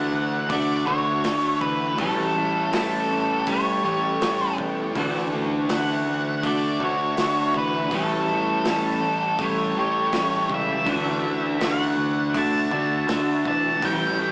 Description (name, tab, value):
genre	rock, shoegaze and dream pop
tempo	81 BPM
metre	4/4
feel	straight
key	D major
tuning	A4 = 440 Hz
part	octave-fuzz lead guitar	melody	0.0-14.3 s	A4 to A5	-24 LUFS	equal	distortion
part	evolving wavetable pad	sustained chords	0.0-14.3 s	F#4 to C#6	-32 LUFS	equal	chorus, built-in reverb
part	electric guitar through a small old amp	arpeggios	0.0-14.3 s	E3 to G4	-31 LUFS	equal	none
part	crunchy overdriven guitar	riff	0.0-14.3 s	A2 to A4	-29 LUFS	equal	none
part	raw garage guitar	riff	0.0-14.3 s	A2 to D4	-33 LUFS	equal	none
part	thick fuzz guitar	riff	0.0-14.3 s	A2 to D4	-28 LUFS	equal	distortion
part	growling picked electric bass	bass	0.0-14.3 s	A1 to A2	-33 LUFS	equal	overdrive
part	loose indie drum kit	drums	0.5-14.0 s	hi-hat, kick drum, snare drum	-31 LUFS	equal	none
room	wet stone room reverb, RT60 1.1 s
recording	rough rehearsal-room recording, small speaker sound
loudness	-20 LUFS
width	side -36 dB against mid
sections	0.0-14.3 A section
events	none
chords	0.0 Dmaj9; 2.0 A7; 5.0 Dmaj9; 7.9 A7; 10.9 Dmaj9